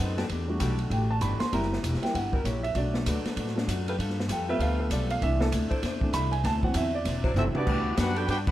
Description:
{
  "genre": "jazz, big band swing",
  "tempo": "195 BPM",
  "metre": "4/4",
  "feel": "swing 61% on 8ths",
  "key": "G major",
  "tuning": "A4 = 440 Hz",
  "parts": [
    { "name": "vintage hollow-body jazz guitar", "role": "accompaniment", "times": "0.0-8.5 s", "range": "G2 to C5", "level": "-37 LUFS", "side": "left 4 dB", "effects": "none" },
    { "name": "warm saxophone section", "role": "sustained chords", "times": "0.0-8.2 s", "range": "F#3 to C5", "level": "-37 LUFS", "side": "left 1 dB", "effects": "none" },
    { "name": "upright bass", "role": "bass", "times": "0.0-8.5 s", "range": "E1 to A2", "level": "-29 LUFS", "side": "equal", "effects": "none" },
    { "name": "open jazz drum kit", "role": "drums", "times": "0.2-8.5 s", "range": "crash cymbal, hi-hat, kick drum, ride cymbal, snare drum, toms", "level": "-32 LUFS", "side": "equal", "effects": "none" },
    { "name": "warm grand piano", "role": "accompaniment", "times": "0.5-7.5 s", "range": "E3 to C6", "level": "-31 LUFS", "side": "right 2 dB", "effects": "none" },
    { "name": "warm trumpet section", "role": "melody", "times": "7.4-8.5 s", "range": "B3 to G5", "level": "-30 LUFS", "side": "equal", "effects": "none" },
    { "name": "warm trombone section", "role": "second line", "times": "7.4-8.5 s", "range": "E3 to G4", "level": "-33 LUFS", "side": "right 2 dB", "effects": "none" }
  ],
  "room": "moderate large studio reverb, RT60 1.3 s",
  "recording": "dark, warm production",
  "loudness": "-25 LUFS",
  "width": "side -14 dB against mid",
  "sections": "0.0-7.7 A section",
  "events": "grand piano solo 0.0-7.7; drum fill 7.4-7.7",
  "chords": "0.3 Em11; 1.5 F#7b9; 2.8 Bm7; 4.0 G9; 5.2 C69; 6.4 D9; 7.7 Gmaj7",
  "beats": "| 0.29 0.60 0.91 1.21 | 1.52 1.83 2.14 2.44 | 2.75 3.06 3.37 3.67 | 3.98 4.29 4.59 4.90 | 5.21 5.52 5.82 6.13 | 6.44 6.75 7.05 7.36 | 7.67 7.98 8.28"
}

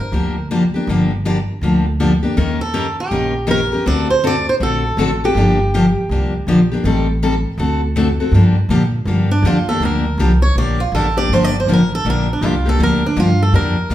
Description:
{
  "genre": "acoustic string swing (jazz manouche)",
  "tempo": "161 BPM",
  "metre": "4/4",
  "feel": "swing 63% on 8ths",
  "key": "G minor",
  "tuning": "A4 = 442 Hz",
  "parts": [
    { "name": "picked swing-style acoustic guitar", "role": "melody", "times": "0.0-6.7, 9.3-13.9 s", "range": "D4 to D5", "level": "-19 LUFS", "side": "right 2 dB", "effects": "none" },
    { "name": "picked steel-string acoustic guitar", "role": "accompaniment", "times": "0.1-13.9 s", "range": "D3 to Bb4", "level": "-17 LUFS", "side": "left 2 dB", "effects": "none" },
    { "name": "upright bass", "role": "bass", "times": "0.1-13.9 s", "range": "G1 to Bb2", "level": "-18 LUFS", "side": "equal", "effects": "none" }
  ],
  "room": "wet large studio reverb, RT60 0.9 s",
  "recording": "band playing live in one room",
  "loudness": "-14 LUFS",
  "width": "side -13 dB against mid",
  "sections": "0.0-8.3 A section; 8.3-13.9 B section",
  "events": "steel-string acoustic guitar solo 8.3-13.9",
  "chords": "0.0 Gm7; 2.4 Eb7; 3.9 D7; 5.4 Gm7; 6.8 Am7b5; 7.6 D7; 8.3 Gm9",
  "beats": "0.14 0.51 | 0.88 1.26 1.63 2.00 | 2.37 2.75 3.12 3.49 | 3.86 4.24 4.61 4.98 | 5.35 5.73 6.10 6.47 | 6.84 7.21 7.59 7.96 | 8.33 8.70 9.08 9.45 | 9.82 10.19 10.56 10.94 | 11.31 11.68 12.05 12.42 | 12.80 13.17 13.54 13.91"
}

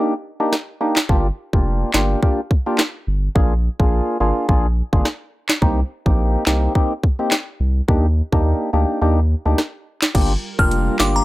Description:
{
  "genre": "dancehall",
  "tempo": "106 BPM",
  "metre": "4/4",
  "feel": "swing 56% on 16ths",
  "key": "unclear",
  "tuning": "A4 = 441 Hz",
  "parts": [
    { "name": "percussive organ stab", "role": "accompaniment", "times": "0.0-11.2 s", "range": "Bb3 to Ab4", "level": "-20 LUFS", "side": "equal", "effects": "chorus, sidechain pumping" },
    { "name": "island pop drum kit", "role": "drums", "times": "0.5-11.1 s", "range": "crash cymbal, handclaps, hi-hat, kick drum, rim click, snare drum", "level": "-17 LUFS", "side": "equal", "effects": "none" },
    { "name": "saturated sub bass", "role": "bass", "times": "1.1-11.2 s", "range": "F1 to Eb2", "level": "-18 LUFS", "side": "equal", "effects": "none" },
    { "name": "airy breathy pad", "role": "sustained chords", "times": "10.4-11.2 s", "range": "G3 to Bb4", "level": "-30 LUFS", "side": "right 2 dB", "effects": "chorus, phaser, sidechain pumping" },
    { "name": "glassy synth bell", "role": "melody", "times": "10.6-11.2 s", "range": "Bb5 to F6", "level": "-20 LUFS", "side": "left 1 dB", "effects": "chorus" }
  ],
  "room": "little or no reverb",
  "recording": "dry, gritty hardware recording, transformer saturation",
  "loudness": "-16 LUFS",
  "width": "side -17 dB against mid",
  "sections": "0.0-10.1 A section; 10.1-11.2 B section",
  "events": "break 0.0-1.1; kick muted 9.0-10.1",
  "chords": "0.0 Ebmaj7; 1.1 Gm7; 3.4 Bb7; 5.6 Cm7; 7.9 Ebmaj7; 10.1 Gm7",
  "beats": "0.53 | 1.09 1.66 2.23 2.79 | 3.36 3.92 4.49 5.05 | 5.62 6.19 6.75 7.32 | 7.88 8.45 9.02 9.58 | 10.15 10.71"
}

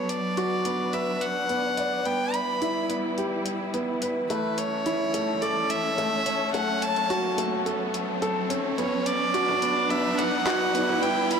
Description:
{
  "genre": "piano and strings electronica",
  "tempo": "107 BPM",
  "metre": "4/4",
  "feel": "straight",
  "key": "B minor",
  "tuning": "A4 = 440 Hz",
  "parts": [
    { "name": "rich violin", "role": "melody", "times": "0.0-11.4 s", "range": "B4 to B5", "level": "-28 LUFS", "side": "right 1 dB", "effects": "digital delay" },
    { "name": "dark studio string section", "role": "sustained chords", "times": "0.0-11.4 s", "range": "E3 to D5", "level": "-32 LUFS", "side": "left 1 dB", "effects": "none" },
    { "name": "felt-muted upright piano", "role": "riff", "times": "0.0-11.4 s", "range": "A3 to D5", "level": "-28 LUFS", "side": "equal", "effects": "digital delay" },
    { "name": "riser", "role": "sound effects", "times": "1.6-11.4 s", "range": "none", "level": "-32 LUFS", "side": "right 2 dB", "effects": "none" },
    { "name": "deep house drum kit", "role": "drums", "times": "0.1-11.4 s", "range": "handclaps, hi-hat, toms", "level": "-34 LUFS", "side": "left 1 dB", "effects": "high-pass filter on hats, high-pass filter on toms, high-pass filter on snare, high-pass filter on room" }
  ],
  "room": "moderate scoring stage reverb, RT60 1.9 s",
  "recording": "none",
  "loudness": "-23 LUFS",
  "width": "side -6 dB against mid",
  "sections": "0.0-11.4 A section",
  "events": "build-up 0.0-11.4; riser 1.6-11.4",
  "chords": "0.0 Bm; 2.1 G6; 4.3 A; 6.5 F#m; 8.8 Bm",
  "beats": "0.37 0.94 1.50 | 2.06 2.62 3.18 3.74 | 4.30 4.86 5.42 5.98 | 6.54 7.10 7.66 8.22 | 8.79 9.35 9.91 10.47 | 11.03"
}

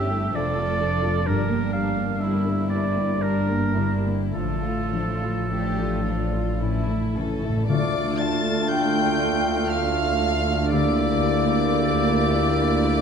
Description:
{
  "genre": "classical, slow romantic movement for symphony orchestra",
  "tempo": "50-65 BPM",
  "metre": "3/4",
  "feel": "rubato",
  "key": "D minor",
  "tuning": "A4 = 440 Hz",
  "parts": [
    { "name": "warm chamber violin section", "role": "melody", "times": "0.0-13.0 s", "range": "E4 to A6", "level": "-32 LUFS", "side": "left 5 dB", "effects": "none" },
    { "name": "warm chamber violin section", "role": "second line", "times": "0.0-13.0 s", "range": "D4 to A5", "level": "-32 LUFS", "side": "left 1 dB", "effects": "none" },
    { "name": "warm oboe", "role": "second line", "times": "0.0-13.0 s", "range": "A4 to F5", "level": "-30 LUFS", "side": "right 3 dB", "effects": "none" },
    { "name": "warm chamber viola section", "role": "accompaniment", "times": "0.0-13.0 s", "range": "E3 to F4", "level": "-30 LUFS", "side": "right 3 dB", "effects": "none" },
    { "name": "concert harp", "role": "arpeggios", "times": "0.0-13.0 s", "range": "F2 to D5", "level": "-29 LUFS", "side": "left 8 dB", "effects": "none" },
    { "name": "warm chamber cello section", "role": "bass", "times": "0.0-13.0 s", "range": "F2 to D3", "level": "-28 LUFS", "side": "right 2 dB", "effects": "none" },
    { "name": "warm chamber double bass section", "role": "bass", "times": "0.0-13.0 s", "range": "F1 to D2", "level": "-29 LUFS", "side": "right 2 dB", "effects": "none" },
    { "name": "timpani", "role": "percussion", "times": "6.6-9.2 s", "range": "A2 to D3", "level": "-29 LUFS", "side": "left 2 dB", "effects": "none" },
    { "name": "hollow small flute group", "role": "second line", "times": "7.7-13.0 s", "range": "D5 to A5", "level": "-31 LUFS", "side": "right 1 dB", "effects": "none" },
    { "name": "mellow clarinet", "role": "second line", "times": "7.7-13.0 s", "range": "F4 to G4", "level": "-31 LUFS", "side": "left 4 dB", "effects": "none" },
    { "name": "clear bassoon", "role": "accompaniment", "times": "7.7-13.0 s", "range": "A3 to Bb3", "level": "-30 LUFS", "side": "right 2 dB", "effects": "none" },
    { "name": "dark French horn section", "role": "sustained chords", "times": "7.7-13.0 s", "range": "A3 to E4", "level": "-29 LUFS", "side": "left 4 dB", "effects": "none" },
    { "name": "warm tuba", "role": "bass", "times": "7.7-13.0 s", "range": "D2", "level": "-30 LUFS", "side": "right 4 dB", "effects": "none" }
  ],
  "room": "wet scoring stage reverb, RT60 1.6 s",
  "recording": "dark, warm production",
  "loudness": "-20 LUFS",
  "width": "side -6 dB against mid",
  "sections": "0.0-7.7 A section; 7.7-13.0 B section",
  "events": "timpani fill 6.6-7.7",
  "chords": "0.3 Dm/F; 1.3 Gm; 4.3 Dm/A; 6.6 A; 7.7 Dm; 10.7 Em7b5/D",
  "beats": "0.34 | 1.28 2.22 3.23 | 4.34 5.50 6.61 | 7.69 8.71 9.70 | 10.73 11.75 12.76"
}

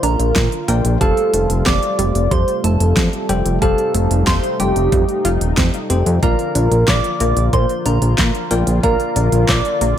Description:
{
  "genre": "synthwave",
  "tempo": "92 BPM",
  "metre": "4/4",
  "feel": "straight",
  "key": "Bb major",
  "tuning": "A4 = 438 Hz",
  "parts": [
    { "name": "warm velvety synth lead", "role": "melody", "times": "0.0-10.0 s", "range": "G4 to D5", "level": "-21 LUFS", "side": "equal", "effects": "chorus, ping-pong delay" },
    { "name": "soft synth bell", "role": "second line", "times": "0.0-10.0 s", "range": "G5 to D6", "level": "-26 LUFS", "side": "right 3 dB", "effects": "chorus, ping-pong delay" },
    { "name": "warm analog pad", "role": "sustained chords", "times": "0.0-10.0 s", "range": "C3 to F4", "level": "-25 LUFS", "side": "equal", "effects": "chorus, sidechain pumping" },
    { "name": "analog pluck", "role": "arpeggios", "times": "0.0-10.0 s", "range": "G3 to F4", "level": "-25 LUFS", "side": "right 2 dB", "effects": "chorus, ping-pong delay" },
    { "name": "bell-like tine electric piano", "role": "stabs", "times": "0.0-10.0 s", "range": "F4 to G5", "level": "-25 LUFS", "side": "left 4 dB", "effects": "ping-pong delay" },
    { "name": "fat analog bass", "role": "bass", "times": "0.0-9.9 s", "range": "Eb1 to Bb2", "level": "-17 LUFS", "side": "equal", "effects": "tube saturation, sidechain pumping" },
    { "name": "pop drum kit", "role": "drums", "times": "0.0-9.9 s", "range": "handclaps, hi-hat, snare drum", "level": "-22 LUFS", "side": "equal", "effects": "none" },
    { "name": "electronic kick drum", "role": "drums", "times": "0.4-9.6 s", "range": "none", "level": "-19 LUFS", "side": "equal", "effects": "none" }
  ],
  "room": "light reverb",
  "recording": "none",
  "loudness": "-14 LUFS",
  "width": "side -10 dB against mid",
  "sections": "0.0-10.0 A section",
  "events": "none",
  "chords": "0.0 Bb; 1.0 Fadd9; 6.2 Bb",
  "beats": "0.36 | 1.01 1.66 2.31 2.97 | 3.62 4.27 4.92 5.58 | 6.23 6.88 7.53 8.18 | 8.84 9.49"
}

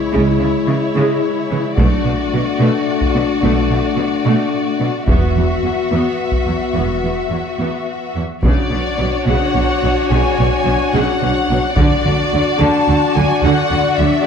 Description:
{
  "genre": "cinematic, epic orchestral film score",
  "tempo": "72 BPM (dotted quarters)",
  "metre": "6/8",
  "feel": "straight",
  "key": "B dorian",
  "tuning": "A4 = 439 Hz",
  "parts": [
    { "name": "warm symphonic violin section", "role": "melody", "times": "0.0-14.3 s", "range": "C#5 to A5", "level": "-22 LUFS", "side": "left 4 dB", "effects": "none" },
    { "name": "warm studio violin section", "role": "second line", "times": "0.0-14.3 s", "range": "E4 to D5", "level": "-22 LUFS", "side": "left 2 dB", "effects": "none" },
    { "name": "mellow French horn section", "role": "sustained chords", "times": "0.0-14.3 s", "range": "G#3 to F#4", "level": "-20 LUFS", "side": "left 6 dB", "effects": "none" },
    { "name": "rich symphonic viola section", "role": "accompaniment", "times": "0.1-14.3 s", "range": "C#3 to D4", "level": "-22 LUFS", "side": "right 1 dB", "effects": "none" },
    { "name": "rich symphonic cello section", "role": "bass", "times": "0.1-14.1 s", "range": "E2 to D3", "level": "-21 LUFS", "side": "right 3 dB", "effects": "none" },
    { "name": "rich symphonic double bass section", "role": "bass", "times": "0.1-14.1 s", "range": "E1 to D2", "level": "-21 LUFS", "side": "right 3 dB", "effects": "none" },
    { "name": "solo taiko drums", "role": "drums", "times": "1.8-12.8 s", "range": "none", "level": "-19 LUFS", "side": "equal", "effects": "none" }
  ],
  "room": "moderate scoring stage reverb, RT60 1.9 s",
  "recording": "dark, warm production",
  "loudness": "-14 LUFS",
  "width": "side -7 dB against mid",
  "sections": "0.0-8.4 A section; 8.4-14.3 B section",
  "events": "build-up 0.0-8.4",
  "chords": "0.0 C#m; 1.8 Bm7; 5.1 Esus2; 8.4 Bmadd9; 11.8 D",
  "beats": "| 0.13 0.96 | 1.78 2.60 | 3.43 4.25 | 5.08 5.91 | 6.75 7.59 | 8.44 9.27 | 10.11 10.94 | 11.77 12.60 | 13.43 14.26"
}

